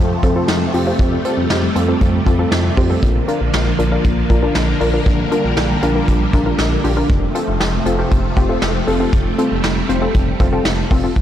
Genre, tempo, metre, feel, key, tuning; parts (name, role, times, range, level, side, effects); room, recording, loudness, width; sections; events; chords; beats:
synth-pop; 118 BPM; 4/4; straight; A4 = 440 Hz
phased string machine; sustained chords; 0.0-11.1 s; C3 to Bb3; -20 LUFS; right 1 dB; ensemble chorus, phaser
smooth synth bass; bass; 0.0-11.2 s; F1 to F2; -19 LUFS; equal; tube saturation
warbly dusty pluck; accompaniment; 0.2-11.2 s; C4 to C5; -20 LUFS; left 2 dB; chorus
soft brush drum kit; drums; 0.2-11.2 s; hi-hat, kick drum, snare drum; -18 LUFS; equal; soft clipping on snare
moderate concert hall reverb, RT60 2.5 s; blown-out, overdriven recording, overdrive; -14 LUFS; side -11 dB against mid
0.0-11.2 A section
0.0 F; 3.0 Bb; 7.1 F
0.48 | 0.99 1.50 2.01 2.52 | 3.03 3.54 4.04 4.55 | 5.06 5.57 6.08 6.59 | 7.09 7.60 8.11 8.62 | 9.13 9.64 10.15 10.65 | 11.16